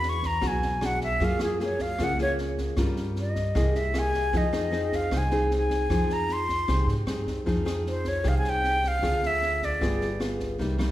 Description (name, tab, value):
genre	bossa nova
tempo	154 BPM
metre	4/4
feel	straight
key	F minor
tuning	A4 = 440 Hz
part	breathy concert flute	melody	0.0-10.2 s	Ab4 to Db6	-28 LUFS	equal	none
part	nylon-string guitar	accompaniment	0.0-10.9 s	B2 to Bb4	-29 LUFS	left 1 dB	none
part	upright bass	bass	0.0-10.9 s	G1 to Ab2	-30 LUFS	equal	none
part	open jazz drum kit	drums	0.0-10.9 s	kick drum, rim click, snare drum	-32 LUFS	right 1 dB	none
room	wet recital hall reverb, RT60 1.4 s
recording	recorded in a church or concert hall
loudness	-24 LUFS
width	side -14 dB against mid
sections	0.0-7.5 A section; 7.5-10.9 B section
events	flute solo 0.0-7.5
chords	0.0 E9; 1.2 Gbmaj9; 2.8 Gm7b5; 3.6 Caug7; 4.3 Fm7; 9.0 Dm7b5; 9.8 G7b9